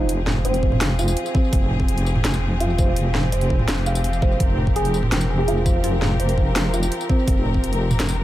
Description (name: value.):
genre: half-time drum and bass.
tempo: 167 BPM.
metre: 4/4.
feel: half-time.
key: F minor.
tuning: A4 = 438 Hz.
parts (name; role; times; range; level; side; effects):
soft struck synth lead; melody; 0.0-0.8, 4.8-6.2 s; C4 to Ab4; -28 LUFS; equal; chorus, phaser, dub echo.
bright studio string section; sustained chords; 0.0-8.2 s; F3 to Bb4; -29 LUFS; left 1 dB; sidechain pumping.
felt-muted upright piano; arpeggios; 0.0-8.2 s; C4 to F5; -27 LUFS; right 2 dB; dub echo.
deep soft wobble bass; bass; 0.0-8.2 s; F1; -22 LUFS; equal; chorus.
drum and bass drum kit; drums; 0.1-8.2 s; hi-hat, snare drum, tambourine, toms; -25 LUFS; equal; overdrive.
electronic kick drum; drums; 0.6-7.6 s; none; -20 LUFS; equal; overdrive.
room: light reverb, digital ambience.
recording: echo-heavy mix.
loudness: -18 LUFS.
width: side -14 dB against mid.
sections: 0.0-8.2 A section.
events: none.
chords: 0.0 Fm.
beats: | 0.09 0.45 0.81 1.17 | 1.53 1.89 2.25 2.60 | 2.96 3.32 3.68 4.04 | 4.40 4.76 5.12 5.48 | 5.84 6.20 6.56 6.92 | 7.28 7.63 7.99.